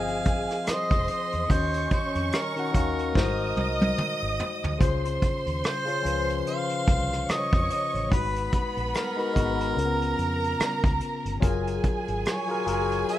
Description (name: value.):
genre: lush 1970s-style soul.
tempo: 72 BPM.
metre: 4/4.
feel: swing 58% on 16ths.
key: Ab major.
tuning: A4 = 440 Hz.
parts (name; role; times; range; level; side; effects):
mellow harmonica; melody; 0.0-13.2 s; Bb4 to F5; -30 LUFS; right 1 dB; none.
warm studio violin section; second line; 0.0-13.2 s; Cb4 to Eb6; -31 LUFS; right 2 dB; none.
barky tine electric piano; accompaniment; 0.0-13.2 s; Db3 to Gb5; -30 LUFS; left 4 dB; auto-pan.
vintage muted fingered electric bass; bass; 0.0-13.0 s; F1 to F2; -31 LUFS; equal; none.
vintage brush drum kit; drums; 0.1-13.2 s; hi-hat, kick drum, rim click, snare drum, toms; -26 LUFS; equal; none.
room: small room reverb.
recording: rough home demo mix.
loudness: -24 LUFS.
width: side -13 dB against mid.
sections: 0.0-13.2 A section.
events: drum fill 3.2-4.8.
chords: 0.0 Fm7; 1.5 Ebm7; 3.2 Ab7; 4.8 Dbmaj7; 8.1 Abm7; 9.8 Db7; 11.4 Gbmaj9.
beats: 0.67 | 1.50 2.33 3.15 3.98 | 4.81 5.63 6.46 7.29 | 8.11 8.94 9.77 10.60 | 11.42 12.25 13.08.